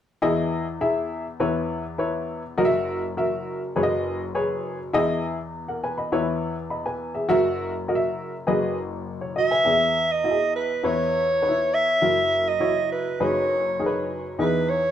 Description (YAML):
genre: soul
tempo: 102 BPM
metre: 4/4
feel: straight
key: unclear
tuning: A4 = 438 Hz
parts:
  - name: warm upright piano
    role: accompaniment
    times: 0.2-14.9 s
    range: F#1 to B5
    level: -24 LUFS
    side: left 1 dB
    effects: none
  - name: mellow soprano saxophone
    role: melody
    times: 9.4-14.9 s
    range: B4 to E5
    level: -21 LUFS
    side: right 1 dB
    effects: tape echo
room: wet studio reverb, RT60 0.6 s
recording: dark, warm production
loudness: -21 LUFS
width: side -10 dB against mid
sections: 0.2-9.7 A section; 9.7-14.9 B section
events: none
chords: 0.2 Emaj7; 1.4 C#m7/E; 2.6 F#7; 3.8 B6/F#; 4.9 Emaj7; 6.1 C#m7/E; 7.3 F#7; 8.5 B6/F#; 9.7 Emaj7; 10.8 C#m7/E; 12.0 F#7; 13.2 B6/F#; 14.4 Emaj7